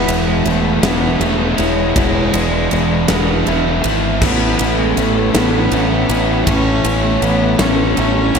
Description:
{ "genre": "post-rock", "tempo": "53 BPM (dotted quarters)", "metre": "6/8", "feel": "straight", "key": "A major", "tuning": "A4 = 440 Hz", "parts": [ { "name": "clear cello", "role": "melody", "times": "0.0-8.4 s", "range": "G#3 to C#4", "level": "-21 LUFS", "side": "left 1 dB", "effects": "slapback echo, tape echo" }, { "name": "mellow electric guitar", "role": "arpeggios", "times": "0.0-8.4 s", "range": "E2 to E4", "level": "-23 LUFS", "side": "left 6 dB", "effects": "analog chorus, slapback echo, tape echo" }, { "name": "distorted electric guitar", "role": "riff", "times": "0.0-8.4 s", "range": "A2 to E4", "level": "-21 LUFS", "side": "left 12 dB", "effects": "distortion, slapback echo" }, { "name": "overdriven semi-hollow guitar", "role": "riff", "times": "0.0-8.4 s", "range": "A2 to E4", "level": "-20 LUFS", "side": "right 11 dB", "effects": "slapback echo" }, { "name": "growling fingered electric bass", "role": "bass", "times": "0.0-8.4 s", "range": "E1 to A1", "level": "-20 LUFS", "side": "equal", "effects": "overdrive" }, { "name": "vibraphone with soft mallets", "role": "arpeggios", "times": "0.1-8.4 s", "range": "A4 to E5", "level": "-26 LUFS", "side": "right 6 dB", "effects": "slapback echo, tape echo" }, { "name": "huge arena drum kit", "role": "drums", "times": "0.1-8.4 s", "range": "crash cymbal, kick drum, ride cymbal, snare drum", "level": "-20 LUFS", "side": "equal", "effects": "none" } ], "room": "moderate lush hall reverb, RT60 2.4 s", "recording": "big arena sound", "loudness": "-13 LUFS", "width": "side -6 dB against mid", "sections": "0.0-8.4 A section", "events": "none", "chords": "0.0 E; 4.2 Aadd9" }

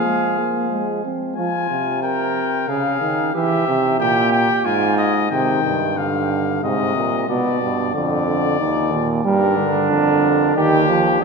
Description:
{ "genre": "classical, imitative canzona for brass ensemble", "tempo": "92 BPM", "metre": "3/4", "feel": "straight", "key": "F minor, C minor from 5.3 s", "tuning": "A4 = 441 Hz", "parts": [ { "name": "warm trumpet", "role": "melody", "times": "0.0-11.2 s", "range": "G4 to Ab5", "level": "-23 LUFS", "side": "left 8 dB", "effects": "none" }, { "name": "warm flugelhorn", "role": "second line", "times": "0.0-5.3, 9.3-11.2 s", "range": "D4 to Bb4", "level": "-22 LUFS", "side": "right 5 dB", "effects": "none" }, { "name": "warm euphonium", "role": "accompaniment", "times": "0.0-11.2 s", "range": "Ab2 to C4", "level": "-20 LUFS", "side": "right 2 dB", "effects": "none" }, { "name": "clear euphonium", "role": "bass", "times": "0.0-1.0, 5.3-11.2 s", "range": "D2 to F3", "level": "-23 LUFS", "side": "right 2 dB", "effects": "none" } ], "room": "wet church reverb, RT60 2.8 s", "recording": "none", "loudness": "-16 LUFS", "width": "side -4 dB against mid", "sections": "0.0-1.4 A section; 1.4-5.3 B section; 5.3-11.2 C section", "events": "none", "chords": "0.0 Fm; 2.7 Db; 3.3 C; 4.7 Fm/Ab; 5.3 Cm; 6.6 Ab; 7.3 G; 8.6 Bbadd11/Eb; 9.3 Gm; 10.6 Eb" }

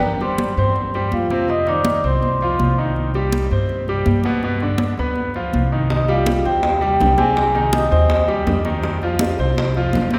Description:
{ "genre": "latin, salsa", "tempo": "163 BPM", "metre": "4/4", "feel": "straight", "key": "C minor", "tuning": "A4 = 440 Hz", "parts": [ { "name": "vibraphone with soft mallets", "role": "melody", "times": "0.0-2.8, 5.9-8.3 s", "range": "F4 to Eb6", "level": "-22 LUFS", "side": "equal", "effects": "none" }, { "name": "congas", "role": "percussion", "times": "0.0-10.2 s", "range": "none", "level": "-28 LUFS", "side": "equal", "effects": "none" }, { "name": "bright concert grand piano", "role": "accompaniment", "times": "0.2-10.2 s", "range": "B2 to C5", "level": "-25 LUFS", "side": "equal", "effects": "none" }, { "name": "upright bass", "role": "bass", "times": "0.6-10.2 s", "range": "G1 to G2", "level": "-24 LUFS", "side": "equal", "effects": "none" }, { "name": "bongos", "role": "percussion", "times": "5.9-10.2 s", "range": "none", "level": "-29 LUFS", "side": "equal", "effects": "none" } ], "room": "wet cathedral reverb, RT60 4.7 s", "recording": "recorded in a church or concert hall", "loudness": "-18 LUFS", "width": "mono", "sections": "0.0-10.2 A section", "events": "none", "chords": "0.0 C5; 1.5 F5; 3.0 Cm; 4.4 G7; 5.9 Abmaj7/C; 8.8 F5" }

